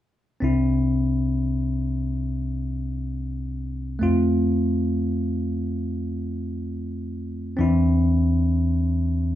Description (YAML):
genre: pop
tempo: free time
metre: none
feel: none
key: C major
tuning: A4 = 440 Hz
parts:
  - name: bell-like tine electric piano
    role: accompaniment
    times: 0.4-9.4 s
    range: C2 to F4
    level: -21 LUFS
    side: equal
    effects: none
room: wet large studio reverb, RT60 0.9 s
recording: band playing live in one room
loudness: -22 LUFS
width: side -13 dB against mid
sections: 0.4-9.4 A section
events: none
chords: 0.4 Cadd9; 4.0 F; 7.6 Cadd9/E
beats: free time